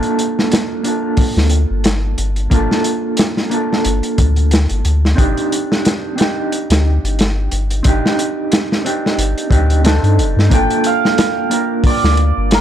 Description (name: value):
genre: trip hop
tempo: 90 BPM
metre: 4/4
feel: swing 56% on 16ths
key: G minor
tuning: A4 = 441 Hz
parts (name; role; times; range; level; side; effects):
- mellow electric guitar; accompaniment; 0.0-12.6 s; Bb3 to Bb4; -18 LUFS; right 2 dB; tremolo, tape echo
- crunchy breakbeat drum kit; drums; 0.0-12.6 s; hi-hat, kick drum, snare drum; -16 LUFS; equal; none
- soft dub sub bass; bass; 1.4-12.6 s; F1 to G2; -14 LUFS; equal; transformer saturation
- cimbalom; melody; 10.5-12.6 s; Bb4 to G5; -17 LUFS; right 4 dB; tape echo
room: small room ambience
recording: dry, gritty hardware recording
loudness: -13 LUFS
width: side -10 dB against mid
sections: 0.0-12.6 A section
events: none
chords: 0.0 Gm7; 5.2 Cmadd9/G; 10.5 Gm7